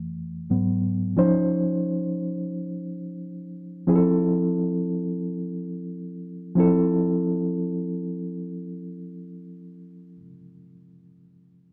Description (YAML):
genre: soul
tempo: free time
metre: none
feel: none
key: F major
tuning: A4 = 444 Hz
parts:
  - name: mellow reed electric piano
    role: solo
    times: 0.0-11.7 s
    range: F2 to C5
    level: -26 LUFS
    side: equal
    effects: fast tremolo
room: moderate large studio reverb, RT60 1.2 s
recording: band playing live in one room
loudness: -25 LUFS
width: mono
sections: 0.0-1.2 A section; 1.2-6.6 B section; 6.6-9.3 C section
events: reed electric piano solo 0.0-1.2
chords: 0.0 Fmaj7; 0.5 Abm7; 1.2 Dbmaj9; 3.9 Fmaj7